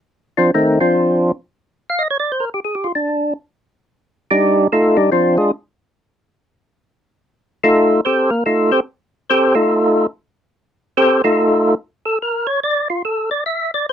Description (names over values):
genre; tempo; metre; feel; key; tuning
jazz; 144 BPM; 4/4; swing 65% on 8ths; F mixolydian; A4 = 441 Hz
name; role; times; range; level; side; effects
percussive tonewheel organ; solo; 0.4-13.9 s; Eb3 to F5; -14 LUFS; equal; slow rotary speaker, overdrive
room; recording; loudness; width
moderate booth ambience, RT60 0.2 s; dry, close 1970s-style studio recording; -14 LUFS; side -9 dB against mid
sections
0.0-13.9 A section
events
tonewheel organ solo 0.0-13.9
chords
0.0 F6; 1.8 N.C.; 3.4 F13; 5.1 Fm6; 6.8 F9; 11.8 N.C.